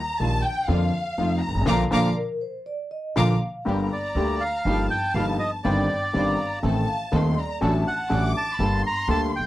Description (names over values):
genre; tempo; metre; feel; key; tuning
tango; 122 BPM; 4/4; rubato; Bb major, G minor from 3.7 s; A4 = 440 Hz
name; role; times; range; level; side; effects
warm studio violin section; second line; 0.0-9.5 s; F5 to D6; -30 LUFS; left 1 dB; slapback echo
warm concert grand piano; accompaniment; 0.2-9.5 s; Eb1 to A4; -25 LUFS; left 2 dB; none
dark chamber string section; stabs; 0.2-9.3 s; G3 to C5; -33 LUFS; right 4 dB; none
upright bass; bass; 0.2-9.4 s; G1 to F2; -26 LUFS; right 1 dB; none
vibraphone with soft mallets; second line; 1.9-7.7 s; Bb4 to G5; -33 LUFS; right 1 dB; none
bandoneon; melody; 3.9-9.5 s; D5 to Bb5; -26 LUFS; right 1 dB; none
room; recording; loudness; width
little or no reverb; dry, close 1970s-style studio recording; -21 LUFS; side -15 dB against mid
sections
0.0-3.7 A section; 3.7-9.5 B section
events
violin section solo 0.0-3.7; band accent 1.7-3.7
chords
0.0 Ebadd9; 0.7 Bb/F; 1.2 F7; 1.7 Bb; 3.7 Gm; 4.7 Ebadd9/G; 5.6 Cmadd9/G; 6.6 Adim; 7.6 D/A; 8.6 Gmadd9